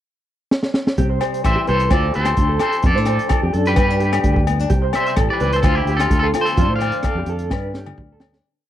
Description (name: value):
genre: highlife guitar band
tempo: 128 BPM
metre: 4/4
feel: straight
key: C major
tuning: A4 = 439 Hz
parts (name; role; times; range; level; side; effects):
- crunchy breakbeat drum kit; drums; 0.5-8.4 s; hi-hat, kick drum, rim click, snare drum, toms; -20 LUFS; equal; none
- nylon-string guitar; accompaniment; 1.0-8.7 s; E2 to F4; -27 LUFS; left 5 dB; none
- electric guitar through a small old amp; arpeggios; 1.0-8.3 s; F4 to C5; -24 LUFS; right 3 dB; tremolo, tape echo
- fingered electric bass; bass; 1.0-8.4 s; A1 to A2; -21 LUFS; equal; none
- agogo bells; percussion; 1.2-8.3 s; none; -26 LUFS; left 12 dB; none
- electric guitar at the edge of break-up; melody; 1.5-8.2 s; E4 to F5; -21 LUFS; equal; harmonic tremolo
room: studio reverb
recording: dry, close 1970s-style studio recording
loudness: -16 LUFS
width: side -12 dB against mid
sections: 0.0-1.0 pickup bar; 1.0-8.4 A section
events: drum fill 0.5-1.0, 7.5-8.4; fade-out 6.6-8.4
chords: 0.0 N.C.; 1.0 C; 1.9 Dm7; 2.8 F6; 3.8 G; 4.7 C; 5.6 Dm7; 6.6 F6; 7.5 G7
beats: 0.05 0.51 | 0.98 1.44 1.91 2.37 | 2.84 3.30 3.77 4.24 | 4.70 5.17 5.64 6.11 | 6.58 7.04 7.51 7.98